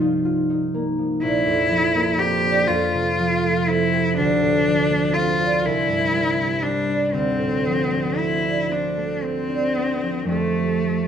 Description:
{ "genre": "classical, impressionist duo for cello and harp", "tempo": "37-42 BPM (dotted quarters)", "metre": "6/8", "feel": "rubato", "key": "unclear", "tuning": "A4 = 440 Hz", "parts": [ { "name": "concert harp", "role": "accompaniment", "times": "0.0-11.1 s", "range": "Bb1 to G4", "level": "-21 LUFS", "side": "right 2 dB", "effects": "none" }, { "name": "clear cello", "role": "melody", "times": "1.2-11.1 s", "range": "A3 to G4", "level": "-21 LUFS", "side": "left 2 dB", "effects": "none" } ], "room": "moderate recital hall reverb, RT60 1.6 s", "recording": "none", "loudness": "-18 LUFS", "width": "side -8 dB against mid", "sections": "0.0-11.1 A section", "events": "none", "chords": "0.0 Ebadd9/C; 1.2 Bbadd9; 2.7 Fadd9; 4.2 Dm7; 5.7 Cadd9; 7.2 Dm7; 10.3 Fadd9" }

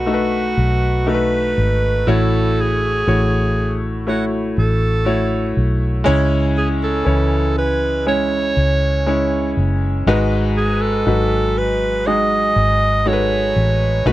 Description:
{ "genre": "pop", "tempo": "60 BPM", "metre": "4/4", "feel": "straight", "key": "C# minor", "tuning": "A4 = 440 Hz", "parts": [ { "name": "edgy alto saxophone", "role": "melody", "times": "0.0-14.1 s", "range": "F#4 to D#5", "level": "-19 LUFS", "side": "right 2 dB", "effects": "none" }, { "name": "bright grand piano", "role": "accompaniment", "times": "0.0-14.1 s", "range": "G#2 to C#5", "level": "-19 LUFS", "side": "left 1 dB", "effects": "none" }, { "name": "vintage muted fingered electric bass", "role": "bass", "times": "0.0-14.1 s", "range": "F#1 to C#2", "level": "-19 LUFS", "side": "equal", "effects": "none" } ], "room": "little or no reverb", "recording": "dry, close 1970s-style studio recording", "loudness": "-15 LUFS", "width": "side -15 dB against mid", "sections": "0.0-14.1 A section", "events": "none", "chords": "0.0 B7; 2.1 F#m7/A; 6.1 C#m; 10.1 G#m7" }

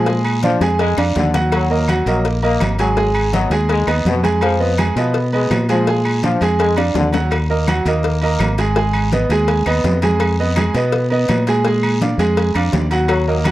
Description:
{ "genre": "latin, salsa", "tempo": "166 BPM", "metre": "4/4", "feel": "straight", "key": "Eb harmonic minor", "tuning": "A4 = 441 Hz", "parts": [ { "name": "bright trombone section", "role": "second line", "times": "0.0-7.1, 13.1-13.4 s", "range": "Cb3 to Bb3", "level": "-22 LUFS", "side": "left 3 dB", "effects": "none" }, { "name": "clear grand piano", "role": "accompaniment", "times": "0.0-13.5 s", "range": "Gb3 to Ab5", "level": "-18 LUFS", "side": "right 2 dB", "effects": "none" }, { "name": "fingered electric bass", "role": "bass", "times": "0.0-13.5 s", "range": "Ab1 to Cb3", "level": "-18 LUFS", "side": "equal", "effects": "none" }, { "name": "congas", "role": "percussion", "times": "0.1-13.5 s", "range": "none", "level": "-24 LUFS", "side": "left 1 dB", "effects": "none" }, { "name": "cowbell and bongos", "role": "percussion", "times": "0.1-13.5 s", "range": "none", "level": "-25 LUFS", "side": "left 6 dB", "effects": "none" }, { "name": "guiro", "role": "percussion", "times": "0.1-13.5 s", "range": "none", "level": "-33 LUFS", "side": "left 4 dB", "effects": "none" }, { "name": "agogo bells and timbales", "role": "percussion", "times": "0.2-13.5 s", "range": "none", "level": "-27 LUFS", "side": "right 4 dB", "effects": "none" }, { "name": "claves", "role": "percussion", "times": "0.3-13.5 s", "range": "none", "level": "-33 LUFS", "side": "left 6 dB", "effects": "none" } ], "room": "small room ambience", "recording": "dry, close 1970s-style studio recording", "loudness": "-14 LUFS", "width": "side -15 dB against mid", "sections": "0.0-7.3 A section; 7.3-13.5 A section", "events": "drum fill 0.6-1.5, 6.8-7.3", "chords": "0.1 Bb7; 1.5 Ebm; 3.0 Abm; 4.4 Fm7b5; 5.9 Bb7; 7.3 Ebm; 8.8 Abm; 10.2 Fm7b5; 11.7 Bb7" }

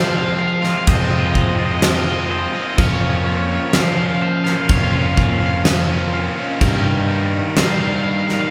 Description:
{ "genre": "post-rock", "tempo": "63 BPM", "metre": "4/4", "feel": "straight", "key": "unclear", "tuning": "A4 = 440 Hz", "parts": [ { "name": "twangy electric guitar", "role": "melody", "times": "0.0-8.5 s", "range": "Db5 to F5", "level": "-26 LUFS", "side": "equal", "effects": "spring reverb" }, { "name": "warbly tape-like pad", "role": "sustained chords", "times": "0.1-8.5 s", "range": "Db4 to C6", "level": "-33 LUFS", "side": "equal", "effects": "none" }, { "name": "twangy electric guitar", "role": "arpeggios", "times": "0.0-8.5 s", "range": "Bb4 to F5", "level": "-32 LUFS", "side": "equal", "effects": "none" }, { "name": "crunchy overdriven guitar", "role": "riff", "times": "0.0-8.5 s", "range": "G2 to F4", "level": "-29 LUFS", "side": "equal", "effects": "phaser" }, { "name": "distorted electric guitar", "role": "riff", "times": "0.0-8.5 s", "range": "G2 to F4", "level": "-26 LUFS", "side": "equal", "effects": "overdrive" }, { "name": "fuzz fingered electric bass", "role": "bass", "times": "0.0-8.4 s", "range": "F2 to G3", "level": "-24 LUFS", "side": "equal", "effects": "overdrive" }, { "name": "huge arena drum kit", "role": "drums", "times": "0.6-8.4 s", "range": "crash cymbal, kick drum, snare drum", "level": "-22 LUFS", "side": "equal", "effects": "none" } ], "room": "moderate large studio reverb, RT60 0.8 s", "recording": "band playing live in one room", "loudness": "-17 LUFS", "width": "mono", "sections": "0.0-8.5 A section", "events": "none", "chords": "0.0 Fmadd9; 2.8 Bbmadd9/F; 6.6 Eb/G" }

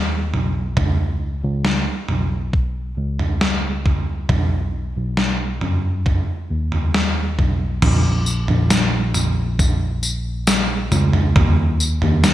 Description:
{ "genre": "dream pop", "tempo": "68 BPM", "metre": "4/4", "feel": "straight", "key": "B major", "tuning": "A4 = 440 Hz", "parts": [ { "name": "tine electric piano", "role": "bass", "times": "0.0-12.3 s", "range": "A#1 to F#2", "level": "-21 LUFS", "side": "equal", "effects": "medium stereo tremolo" }, { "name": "gated 80s digital drum machine", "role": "drums", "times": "0.3-12.3 s", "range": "crash cymbal, kick drum, snare drum, tambourine, toms", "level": "-18 LUFS", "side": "equal", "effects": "gated reverb, gated reverb snare" } ], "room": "light reverb", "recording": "bright 1980s-style digital production", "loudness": "-17 LUFS", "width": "side -13 dB against mid", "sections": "0.0-7.8 A section; 7.8-12.3 B section", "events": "none", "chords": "none" }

